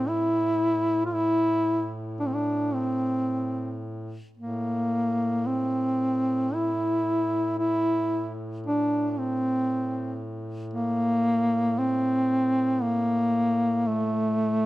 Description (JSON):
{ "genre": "caucasian folk, Caucasian lament", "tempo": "57 BPM", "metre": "3/4", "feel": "rubato", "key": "A phrygian", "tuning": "A4 = 440 Hz", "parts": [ { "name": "mellow duduk", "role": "melody", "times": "0.0-14.7 s", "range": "A3 to F4", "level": "-24 LUFS", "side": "equal", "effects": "none" }, { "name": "warm duduk", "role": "drone", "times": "0.0-14.7 s", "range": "A2", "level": "-34 LUFS", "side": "equal", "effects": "none" } ], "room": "light reverb", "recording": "close, detailed microphones", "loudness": "-23 LUFS", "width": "side -16 dB against mid", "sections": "0.0-14.7 A section", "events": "none", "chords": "none", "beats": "0.09 | 1.14 2.20 3.28 | 4.37 5.47 6.55 | 7.61 8.66 9.71 | 10.75 11.79 12.83 | 13.88" }